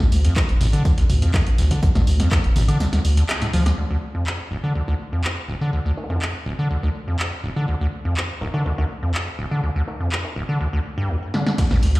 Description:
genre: acid house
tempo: 123 BPM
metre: 4/4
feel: straight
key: D minor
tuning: A4 = 440 Hz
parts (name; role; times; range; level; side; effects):
- acid bass, square; riff; 0.0-12.0 s; D1 to F3; -22 LUFS; equal; overdrive, sidechain pumping, ping-pong delay
- punchy analog drum machine; drums; 0.0-12.0 s; crash cymbal, handclaps, hi-hat, snare drum, tambourine, toms, woodblock; -25 LUFS; equal; none
- saturated sub bass; bass; 0.1-3.7, 11.8-12.0 s; D1 to D2; -18 LUFS; equal; sidechain pumping
- breakbeat sampler-style drum kit; drums; 0.1-11.9 s; hi-hat, snare drum, tambourine; -36 LUFS; equal; high-pass filter on perc, low-pass filter on perc, high-pass filter on snare, low-pass filter on snare, high-pass filter on hats, low-pass filter on hats
- electronic kick drum; drums; 0.4-2.4, 11.6-11.7 s; none; -19 LUFS; equal; none
room: light reverb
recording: played on a big sound system in a bare room, stone room reverb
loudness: -19 LUFS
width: side -20 dB against mid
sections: 0.0-3.8 A section; 3.8-11.6 B section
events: drop 0.0-3.8; kick drops out 2.8-3.8; band accent 3.3; drum fill 11.3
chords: 0.0 D5; 3.8 N.C.

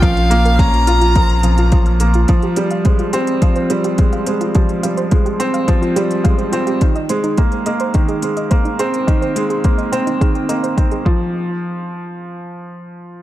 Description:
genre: piano and strings electronica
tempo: 106 BPM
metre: 4/4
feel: straight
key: unclear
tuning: A4 = 441 Hz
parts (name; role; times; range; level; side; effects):
- clear violin; melody; 0.0-1.7 s; F5 to Bb5; -19 LUFS; equal; digital delay
- soft round pluck; arpeggios; 0.0-11.6 s; Eb4 to F6; -24 LUFS; right 2 dB; chorus, cassette tape, sidechain pumping, digital delay
- clear upright piano; riff; 0.0-13.2 s; Eb3 to F4; -18 LUFS; right 1 dB; digital delay
- warm sub bass; bass; 0.0-2.3 s; Bb1; -14 LUFS; equal; sidechain pumping
- electronic hi-hat; drums; 0.0-11.0 s; none; -30 LUFS; equal; overdrive
- electronic kick drum; drums; 0.0-11.2 s; none; -14 LUFS; equal; overdrive
room: moderate echo chamber reverb, RT60 2.5 s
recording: dark, warm production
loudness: -13 LUFS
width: side -14 dB against mid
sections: 0.0-11.3 A section; 11.3-13.2 B section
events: none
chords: 0.0 Bbm; 2.3 Fmadd9; 6.8 Abadd9; 11.1 N.C.

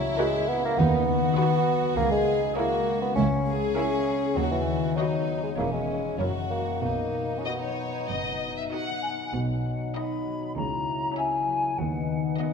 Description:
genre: cinematic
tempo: 99 BPM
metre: 4/4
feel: straight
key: B major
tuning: A4 = 441 Hz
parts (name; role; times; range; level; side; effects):
- warm chamber violin section; second line; 0.0-12.5 s; C#4 to G#4; -32 LUFS; left 4 dB; none
- mellow bassoon; accompaniment; 0.0-8.7 s; E3 to C#4; -27 LUFS; right 2 dB; none
- concert harp; arpeggios; 0.0-12.5 s; F#2 to E5; -31 LUFS; left 7 dB; none
- rich studio double bass section; bass; 0.0-12.3 s; E1 to D#2; -34 LUFS; right 3 dB; none
- warm chamber cello section; bass; 0.0-12.3 s; C#2 to C#3; -32 LUFS; right 4 dB; none
- rich chamber violin section; melody; 0.2-12.5 s; A#4 to F#5; -36 LUFS; left 4 dB; none
- rich chamber viola section; accompaniment; 0.2-12.5 s; B3 to B4; -36 LUFS; right 1 dB; none
- mellow hollow silver concert flute; second line; 9.0-12.5 s; F#5 to B5; -30 LUFS; left 2 dB; none
- dark French horn section; sustained chords; 9.3-12.5 s; F#3 to E4; -34 LUFS; left 2 dB; none
room: wet concert hall reverb, RT60 2.4 s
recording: minimal, uncompressed stereo recording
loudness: -24 LUFS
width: side -6 dB against mid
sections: 0.0-9.3 A section; 9.3-12.5 B section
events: none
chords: 0.0 F#7/C#; 0.8 B/D#; 2.0 C#m; 3.2 A#dim/C#; 4.4 B/D#; 5.6 C#m/E; 6.2 F#7; 6.8 B; 10.6 F#7/C#; 11.8 B/D#

